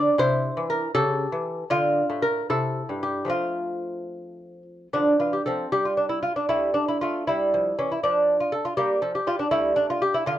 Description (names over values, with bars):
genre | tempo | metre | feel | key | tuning
classical, baroque-style dance for lute | 72-82 BPM (dotted quarters) | 6/8 | rubato | F major, D minor from 4.9 s | A4 = 440 Hz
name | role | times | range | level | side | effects
lute | solo | 0.0-10.4 s | G2 to D5 | -22 LUFS | equal | none
room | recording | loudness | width
little or no reverb | dark, warm production | -22 LUFS | side -12 dB against mid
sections
0.0-4.9 A section; 4.9-10.4 A section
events
none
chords
0.2 C; 0.9 A7/C#; 1.7 Dm; 2.5 C; 3.3 F; 4.9 Dm; 5.7 N.C.; 6.5 A5/G; 8.0 N.C.; 8.8 Gm; 9.5 Dm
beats
| 0.19 0.94 | 1.71 2.49 | 3.30 4.11 | 4.93 5.72 | 6.49 7.27 | 8.02 8.77 | 9.52 10.26